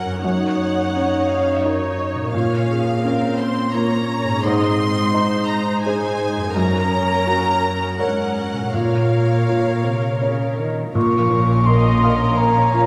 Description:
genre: cinematic, emotional film score for orchestra.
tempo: 85 BPM.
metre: 3/4.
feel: rubato.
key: Bb minor.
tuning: A4 = 440 Hz.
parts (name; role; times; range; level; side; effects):
rich studio violin section; melody; 0.0-12.9 s; Db5 to C6; -28 LUFS; equal; none.
felt-muted upright piano; accompaniment; 0.0-12.9 s; Gb2 to F5; -24 LUFS; equal; none.
rich studio viola section; accompaniment; 0.0-12.9 s; Bb3 to Eb5; -27 LUFS; equal; none.
concert harp; arpeggios; 0.0-12.9 s; Gb2 to F5; -27 LUFS; equal; none.
rich studio cello section; bass; 0.0-12.9 s; Gb2 to Eb3; -27 LUFS; equal; none.
mellow concert flute; second line; 10.9-12.9 s; Bb5 to Db6; -21 LUFS; equal; none.
dark studio double bass section; bass; 10.9-12.9 s; Bb1; -27 LUFS; equal; none.
rich studio violin section; second line; 11.0-12.9 s; Db4 to Bb4; -30 LUFS; equal; none.
room: wet concert hall reverb, RT60 2.0 s.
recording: heard from further back in the room.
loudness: -19 LUFS.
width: mono.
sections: 0.0-11.0 A section; 11.0-12.9 B section.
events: none.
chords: 0.2 Ebm7/Gb; 2.3 Bbm; 4.4 Ab; 6.5 Gb; 8.7 Bbm.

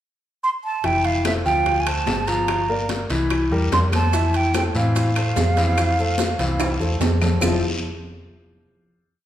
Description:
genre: Afro-Cuban jazz.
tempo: 146 BPM.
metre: 4/4.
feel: straight.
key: F major.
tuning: A4 = 439 Hz.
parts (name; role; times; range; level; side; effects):
breathy mellow silver concert flute; melody; 0.4-7.0 s; E5 to C6; -23 LUFS; right 3 dB; none.
warm concert grand piano; accompaniment; 0.8-7.6 s; E3 to F5; -24 LUFS; left 2 dB; none.
hollow-body short-scale fingered electric bass; bass; 0.8-7.6 s; F1 to A2; -22 LUFS; equal; none.
bongos; percussion; 0.8-7.5 s; none; -31 LUFS; left 6 dB; none.
congas; percussion; 0.8-7.5 s; none; -31 LUFS; left 2 dB; none.
guiro; percussion; 0.8-7.5 s; none; -34 LUFS; left 3 dB; none.
timbales; percussion; 0.8-7.5 s; none; -29 LUFS; right 5 dB; none.
claves; percussion; 1.2-7.5 s; none; -33 LUFS; left 5 dB; none.
maracas; percussion; 4.1-7.5 s; none; -35 LUFS; right 5 dB; none.
room: wet recital hall reverb, RT60 1.4 s.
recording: recorded in a church or concert hall.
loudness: -18 LUFS.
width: side -11 dB against mid.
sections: 0.0-0.8 pickup bar; 0.8-7.4 A section; 7.4-9.1 final chord.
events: drum fill 6.6-7.4.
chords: 0.0 N.C.; 0.8 Fmaj7; 1.7 Dm7; 2.5 Gm7; 3.3 C7; 4.1 Fmaj7.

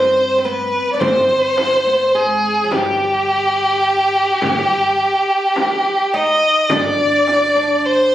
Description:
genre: Arabic maqam ensemble.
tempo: 105 BPM (eighths).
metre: 10/8.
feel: straight.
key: G maqam hijaz.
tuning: A4 = 440 Hz.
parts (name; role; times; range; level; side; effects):
rich violin; melody; 0.0-8.1 s; G4 to Eb5; -14 LUFS; equal; slapback echo.
oud; second line; 0.0-8.1 s; F3 to Eb4; -25 LUFS; right 3 dB; none.
upright bass; bass; 0.0-8.1 s; G1 to G2; -35 LUFS; equal; none.
darbuka; percussion; 1.0-7.5 s; none; -32 LUFS; left 1 dB; none.
frame drum; percussion; 1.0-7.5 s; none; -23 LUFS; left 1 dB; none.
room: moderate studio reverb, RT60 0.7 s.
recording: recorded on a phone in the room, studio reverb.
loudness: -13 LUFS.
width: side -13 dB against mid.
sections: 0.0-8.1 A section.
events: none.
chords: none.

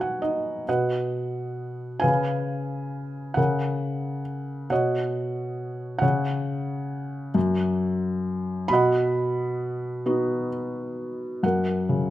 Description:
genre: classical, lyrical solo piano.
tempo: 44 BPM (dotted quarters).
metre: 6/8.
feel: rubato.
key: B major.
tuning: A4 = 441 Hz.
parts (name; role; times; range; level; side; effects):
felt-muted upright piano; solo; 0.0-12.1 s; F#2 to B5; -24 LUFS; equal; none.
room: moderate recital hall reverb, RT60 1.2 s.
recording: dark, warm production.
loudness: -24 LUFS.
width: side -14 dB against mid.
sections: 0.7-11.4 A section.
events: felt piano fill 0.0-0.7.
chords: 0.0 B; 2.0 C#7; 3.4 F#/C#; 4.7 Badd9; 6.0 N.C.; 7.4 F#5; 8.7 B; 11.4 F#.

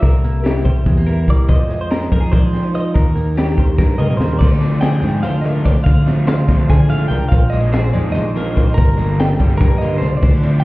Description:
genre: math rock and midwest emo.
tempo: 289 BPM (eighths).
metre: 7/8.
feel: straight.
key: unclear.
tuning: A4 = 440 Hz.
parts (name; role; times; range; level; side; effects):
twelve-string electric guitar; melody; 0.0-10.6 s; Ab4 to Ab5; -26 LUFS; right 2 dB; warbly pitch drift, digital delay.
twelve-string electric guitar; accompaniment; 0.0-10.6 s; F2 to F4; -22 LUFS; right 2 dB; none.
twelve-string electric guitar; arpeggios; 0.0-10.6 s; G4 to G5; -27 LUFS; left 3 dB; spring reverb.
growling fingered electric bass; bass; 0.0-10.6 s; G1 to F3; -17 LUFS; equal; overdrive.
crisp fusion drum kit; drums; 0.0-10.5 s; crash cymbal, hi-hat, kick drum, snare drum, toms; -16 LUFS; equal; none.
crunchy overdriven guitar; riff; 4.6-10.6 s; Bb2 to D4; -23 LUFS; left 1 dB; none.
room: light reverb.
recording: heard muffled through a wall, stone room reverb, EQ.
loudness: -13 LUFS.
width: side -20 dB against mid.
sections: 0.0-4.4 A section; 4.4-10.6 B section.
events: drum fill 3.8-4.4.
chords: 0.0 C7; 1.5 Fm7; 3.0 Ebmaj7; 4.4 Dm7b5; 7.3 Bb9sus4; 8.8 Gm7.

